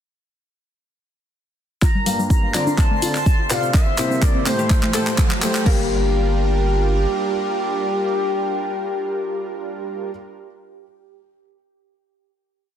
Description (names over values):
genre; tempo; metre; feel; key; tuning
progressive house; 125 BPM; 4/4; straight; G dorian; A4 = 439 Hz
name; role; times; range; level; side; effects
expressive portamento lead; melody; 1.8-10.1 s; G4 to Bb5; -24 LUFS; left 1 dB; wide subtle chorus, sidechain pumping, tape echo
supersaw pad; sustained chords; 1.8-10.1 s; C3 to C5; -30 LUFS; right 2 dB; sidechain pumping, low-pass filter
analog pluck; arpeggios; 1.8-10.1 s; G3 to Bb4; -27 LUFS; left 1 dB; chorus, sidechain pumping, tape echo
saturated sub bass; bass; 1.8-7.1 s; G1 to D2; -22 LUFS; equal; sidechain pumping, high-pass filter
electronic kick drum; drums; 1.8-5.8 s; none; -17 LUFS; equal; none
pop drum kit; drums; 1.8-5.8 s; crash cymbal, handclaps, hi-hat, rim click; -25 LUFS; equal; high-pass filter on snare, high-pass filter on hats, high-pass filter on cymbals
egg shaker; percussion; 1.8-5.6 s; none; -32 LUFS; left 3 dB; none
riser; sound effects; 3.4-5.7 s; none; -32 LUFS; equal; none
twinkling granular texture; texture; 2.4-5.7 s; C5 to C6; -37 LUFS; right 2 dB; none
dark grand piano; stabs; 2.1-10.1 s; G2 to F5; -26 LUFS; left 1 dB; sidechain pumping, low-pass filter, tape echo
room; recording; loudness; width
light reverb, digital ambience; dense, heavily limited modern master; -17 LUFS; side -10 dB against mid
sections
1.8-5.7 build; 5.7-9.5 final chord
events
build-up 1.8-5.7; drum fill 1.8-5.7; filter sweep on synth pluck 1.8-5.7; riser 3.4-5.7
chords
1.8 Gm7; 2.8 Dm7; 3.7 C7; 4.7 Am7; 5.7 Gm7